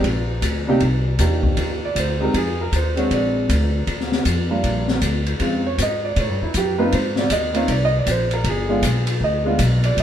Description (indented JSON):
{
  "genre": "jazz piano trio",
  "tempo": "157 BPM",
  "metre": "4/4",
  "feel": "swing 64% on 8ths",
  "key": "C minor",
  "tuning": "A4 = 435 Hz",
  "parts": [
    { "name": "warm grand piano", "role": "melody", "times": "0.0-10.0 s", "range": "C3 to Eb5", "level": "-21 LUFS", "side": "right 2 dB", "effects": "none" },
    { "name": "upright bass", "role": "bass", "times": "0.0-10.0 s", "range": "G1 to A2", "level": "-21 LUFS", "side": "equal", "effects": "none" },
    { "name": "open jazz drum kit", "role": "drums", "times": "0.0-10.0 s", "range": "hi-hat, kick drum, ride cymbal, snare drum", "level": "-24 LUFS", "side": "left 2 dB", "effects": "none" }
  ],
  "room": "moderate stone room reverb, RT60 1.2 s",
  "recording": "band playing live in one room",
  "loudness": "-17 LUFS",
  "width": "side -10 dB against mid",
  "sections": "0.8-10.0 A section",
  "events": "grand piano solo 0.8-10.0",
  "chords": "0.0 Bb; 0.8 Cm9; 2.3 Fm7; 3.1 Bbaug7; 3.9 Ebmaj9; 5.4 Fm7; 6.2 A5; 6.9 Abadd9; 8.5 G(b9)",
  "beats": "0.04 0.43 | 0.81 1.19 1.58 1.96 | 2.34 2.73 3.11 3.49 | 3.88 4.26 4.64 5.02 | 5.40 5.79 6.17 6.55 | 6.93 7.31 7.69 8.07 | 8.45 8.83 9.21 9.59 | 9.97"
}